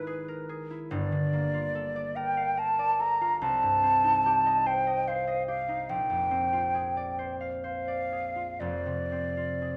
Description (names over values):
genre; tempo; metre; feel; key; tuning
classical, impressionist duo for flute and harp; 59-74 BPM; 3/4; rubato; C minor; A4 = 441 Hz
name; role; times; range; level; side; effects
mellow hollow concert flute; melody; 0.0-9.8 s; B4 to Bb5; -29 LUFS; equal; none
concert harp; accompaniment; 0.0-9.8 s; F1 to F5; -35 LUFS; equal; none
room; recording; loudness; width
wet recital hall reverb, RT60 1.3 s; none; -28 LUFS; mono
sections
0.0-9.8 A section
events
none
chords
0.0 Emaj7#11/G#; 0.9 Gm9; 3.4 Cm6; 5.9 Bb9; 8.6 Fm6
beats
0.07 | 0.91 1.75 2.58 | 3.41 4.24 5.07 | 5.89 6.74 7.64 | 8.61 9.62